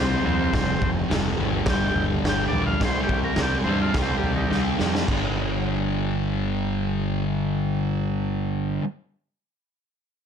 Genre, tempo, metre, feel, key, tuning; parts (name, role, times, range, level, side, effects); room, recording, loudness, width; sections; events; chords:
garage rock duo or trio; 106 BPM; 4/4; straight; A4 = 440 Hz
overdriven combo organ; melody; 0.0-4.6 s; Eb3 to G5; -28 LUFS; equal; digital delay
fuzz guitar; riff; 0.0-8.8 s; F2 to C4; -25 LUFS; equal; distortion
growling picked electric bass; bass; 0.0-8.8 s; F1 to G2; -28 LUFS; equal; overdrive
raw garage drum kit; drums; 0.3-5.2 s; crash cymbal, kick drum, snare drum, toms; -26 LUFS; equal
light reverb; -21 LUFS; side -7 dB against mid
0.0-5.1 A section; 5.1-7.4 B section
transistor combo organ solo 0.0-5.1; drum fill 4.5-5.1
0.0 C5; 0.5 F5; 1.4 Gm; 2.8 Cm; 5.1 G5